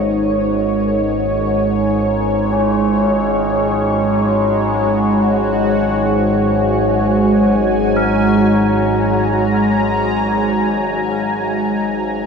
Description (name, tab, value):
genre	dark ambient drone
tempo	free time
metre	none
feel	none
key	unclear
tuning	A4 = 440 Hz
part	sweeping resonant pad	sustained chords	0.0-12.3 s	G#3 to A#5	-15 LUFS	equal	chorus, shimmer reverb
part	tubular bells	arpeggios	0.0-12.3 s	C#4 to A#4	-26 LUFS	left 3 dB	tape echo, shimmer reverb
part	overtone-sweeping drone	drone	0.0-12.3 s	G#1 to G#2	-19 LUFS	equal	chorus, built-in reverb
room	wet echo chamber reverb, RT60 2.0 s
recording	echo-heavy mix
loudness	-13 LUFS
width	side -6 dB against mid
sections	0.0-12.3 A section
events	fade-in on synth drone 0.0-12.3; fade-out 8.1-12.3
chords	0.0 G#7(no3)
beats	free time